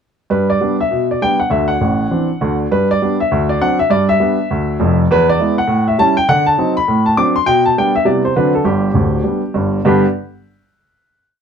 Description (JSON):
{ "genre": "jazz, stride piano", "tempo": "202 BPM", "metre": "4/4", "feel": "swing 62% on 8ths", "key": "G major", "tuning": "A4 = 440 Hz", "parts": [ { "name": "clear upright piano", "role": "solo", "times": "0.3-10.0 s", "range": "D1 to D6", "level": "-12 LUFS", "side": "equal", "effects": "none" } ], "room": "moderate club reverb, RT60 0.6 s", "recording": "none", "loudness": "-12 LUFS", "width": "side -7 dB against mid", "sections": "0.3-9.8 A section; 9.8-11.0 final chord", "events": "none", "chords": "0.3 G; 0.9 G/B; 1.5 D9; 2.7 G; 3.3 D7; 3.9 G; 5.1 E7; 5.7 A7; 6.3 D7b9; 6.9 D7/A; 7.5 G/B; 8.1 Cmaj7; 8.4 D7; 8.7 G" }